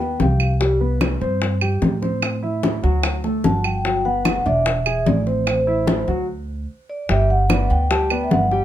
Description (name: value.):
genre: Afro-Cuban jazz.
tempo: 148 BPM.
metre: 4/4.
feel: straight.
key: G major.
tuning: A4 = 436 Hz.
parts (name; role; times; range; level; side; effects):
vibraphone with soft mallets; melody; 0.0-0.5, 3.4-8.6 s; B#4 to A5; -22 LUFS; equal; plate reverb.
dark concert grand piano; accompaniment; 0.0-8.6 s; F#3 to G#5; -25 LUFS; left 1 dB; none.
upright bass; bass; 0.0-8.6 s; E1 to A2; -21 LUFS; right 1 dB; none.
bongos; percussion; 0.0-8.6 s; none; -25 LUFS; left 6 dB; none.
congas; percussion; 0.0-8.5 s; none; -24 LUFS; left 1 dB; none.
claves; percussion; 0.4-8.3 s; none; -25 LUFS; right 7 dB; none.
room: light reverb.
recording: close, detailed microphones.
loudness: -17 LUFS.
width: side -12 dB against mid.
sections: 0.0-7.1 A section; 7.1-8.6 B section.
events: stop 6.3-7.1.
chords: 0.0 Gaug7; 0.6 C5; 2.2 Am; 3.0 D; 3.8 Gmaj7; 4.7 Eaug7; 5.5 Am; 6.3 N.C.; 7.1 Gmaj7.